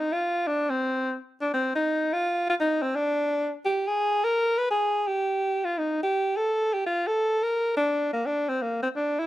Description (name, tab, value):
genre	jazz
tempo	169 BPM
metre	3/4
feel	swing 64% on 8ths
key	unclear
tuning	A4 = 439 Hz
part	clear alto saxophone	solo	0.0-9.3 s	Bb3 to B4	-24 LUFS	equal	none
room	light reverb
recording	none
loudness	-24 LUFS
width	side -15 dB against mid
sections	0.0-9.3 A section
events	none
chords	none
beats	0.10 0.45 | 0.80 1.16 1.51 | 1.87 2.22 2.58 | 2.93 3.28 3.64 | 3.99 4.35 4.70 | 5.06 5.41 5.76 | 6.12 6.47 6.83 | 7.18 7.54 7.89 | 8.25 8.60 8.96